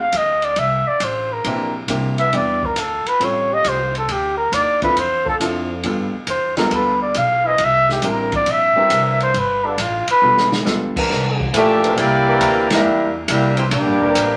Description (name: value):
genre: jazz, big band swing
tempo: 137 BPM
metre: 4/4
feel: swing 68% on 8ths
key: C major from 11.1 s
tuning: A4 = 440 Hz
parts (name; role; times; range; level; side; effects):
- breathy trumpet; melody; 0.0-10.5 s; D4 to F5; -19 LUFS; equal; none
- upright bass; bass; 0.0-14.4 s; E1 to G2; -28 LUFS; equal; none
- open jazz drum kit; drums; 0.1-14.3 s; crash cymbal, hi-hat, kick drum, ride cymbal, snare drum; -27 LUFS; equal; none
- clear baby grand piano; accompaniment; 1.5-10.9 s; F3 to Bb4; -26 LUFS; equal; none
- dark trombone section; sustained chords; 1.5-14.4 s; E3 to Bb4; -28 LUFS; equal; none
- warm trombone section; second line; 11.5-14.4 s; Bb2 to G4; -19 LUFS; equal; none
- mellow trumpet section; melody; 11.6-14.4 s; Bb3 to A5; -22 LUFS; equal; none
room: wet club reverb, RT60 0.7 s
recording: none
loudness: -18 LUFS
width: mono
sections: 0.0-11.1 A section; 11.1-14.4 B section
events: trumpet solo 0.0-11.1; drum fill 10.2-10.7; band accent 12.6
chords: 0.0 N.C.; 0.6 C9; 2.3 Em7; 3.2 A7alt; 4.1 Dm7; 5.8 G9; 7.6 C9; 9.3 G9; 11.1 C9